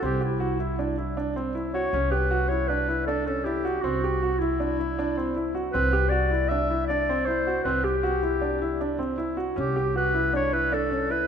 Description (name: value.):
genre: contemporary instrumental, chamber music in an uneven meter.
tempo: 157 BPM.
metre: 5/4.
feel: straight.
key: unclear.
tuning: A4 = 440 Hz.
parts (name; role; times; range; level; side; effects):
clear grand piano; arpeggios; 0.0-11.3 s; C4 to G4; -27 LUFS; right 1 dB; none.
upright bass; bass; 0.0-11.3 s; C2; -30 LUFS; equal; none.
warm clarinet; melody; 0.1-11.3 s; E4 to E5; -27 LUFS; left 1 dB; none.
room: moderate concert hall reverb, RT60 2.5 s.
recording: none.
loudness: -23 LUFS.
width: side -7 dB against mid.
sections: 0.0-11.3 A section.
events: none.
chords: 0.0 Cadd9; 1.9 Cmaj9#11; 3.8 D9/C; 9.6 A9/C.